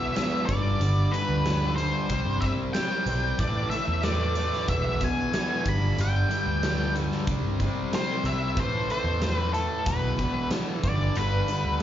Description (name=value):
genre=blues rock power trio and southern rock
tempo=93 BPM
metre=4/4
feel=straight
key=A minor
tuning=A4 = 441 Hz
part: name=octave-fuzz lead guitar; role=melody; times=0.0-11.8 s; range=A4 to B5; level=-29 LUFS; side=left 1 dB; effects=distortion, slapback echo
part: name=fuzz guitar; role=riff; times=0.0-11.8 s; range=E2 to C4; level=-29 LUFS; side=equal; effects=distortion, slapback echo
part: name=big rock drum kit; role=drums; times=0.2-11.8 s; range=hi-hat, kick drum, snare drum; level=-32 LUFS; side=equal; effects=none
part: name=vintage muted picked electric bass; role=bass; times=0.5-11.8 s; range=E1 to G2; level=-27 LUFS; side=equal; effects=none
room=light reverb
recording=live gig heard through the venue's PA, club reverb, nothing above 7.5 kHz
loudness=-24 LUFS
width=side -11 dB against mid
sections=0.0-11.8 A section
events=none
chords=0.5 G; 2.1 C5; 3.4 A5; 4.7 E; 5.7 G5; 7.3 C5; 8.6 Am; 9.9 E5; 10.8 G